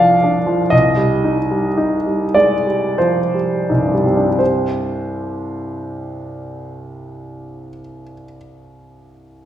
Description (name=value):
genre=classical, impressionist solo piano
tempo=40-64 BPM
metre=3/4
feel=rubato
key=C minor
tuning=A4 = 440 Hz
part: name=clear concert grand piano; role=solo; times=0.0-9.5 s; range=C2 to F5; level=-15 LUFS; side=equal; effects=none
room=wet recital hall reverb, RT60 1.4 s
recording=recorded in a church or concert hall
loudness=-14 LUFS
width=side -11 dB against mid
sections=0.0-4.4 A section; 4.4-8.2 B section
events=slowing down 0.0-4.4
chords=0.0 Csus24; 0.7 Cm; 4.4 Csus2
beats=| 0.72 1.76 2.98 | 4.39 5.67 6.93